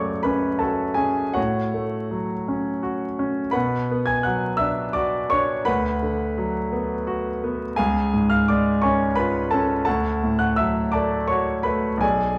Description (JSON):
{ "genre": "classical, romantic nocturne for solo piano", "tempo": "53-60 BPM (dotted quarters)", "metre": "12/8", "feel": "rubato", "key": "F# minor", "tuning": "A4 = 440 Hz", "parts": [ { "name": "bright grand piano", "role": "solo", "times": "0.0-12.4 s", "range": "B1 to G#6", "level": "-23 LUFS", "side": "equal", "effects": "none" } ], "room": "wet large studio reverb, RT60 0.9 s", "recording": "heard from further back in the room, vinyl crackle", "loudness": "-23 LUFS", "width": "mono", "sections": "0.0-12.4 A section", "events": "none", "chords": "0.0 F#m; 1.4 F#m/A; 3.5 Bm; 5.7 Bm/D; 7.8 C#; 9.9 D" }